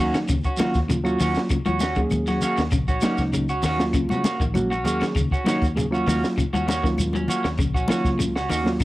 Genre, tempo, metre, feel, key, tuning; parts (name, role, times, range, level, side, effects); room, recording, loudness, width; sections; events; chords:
afrobeat; 99 BPM; 4/4; straight; Eb minor; A4 = 438 Hz
reed electric piano; accompaniment; 0.0-8.8 s; Gb3 to Ab4; -25 LUFS; right 1 dB; cassette tape
electric guitar at the edge of break-up; arpeggios; 0.0-8.8 s; Db3 to Gb3; -30 LUFS; left 3 dB; ensemble chorus, cassette tape, tape echo
clean electric guitar; stabs; 0.0-8.7 s; Bb3 to Gb4; -27 LUFS; right 2 dB; wide subtle chorus, cassette tape, plate reverb
fingered electric bass; bass; 0.0-8.8 s; Bb1 to Db3; -28 LUFS; equal
compact cocktail drum kit; drums; 0.1-8.8 s; hi-hat, kick drum, snare drum; -26 LUFS; equal; cassette tape
claves; percussion; 0.1-8.8 s; -38 LUFS; left 5 dB
shekere; percussion; 0.1-8.8 s; -32 LUFS; right 2 dB
congas; percussion; 0.3-8.8 s; -28 LUFS; left 2 dB
moderate small room reverb, RT60 0.5 s; home recording on cassette; -20 LUFS; side -17 dB against mid
0.0-8.8 A section
0.0 Ebm7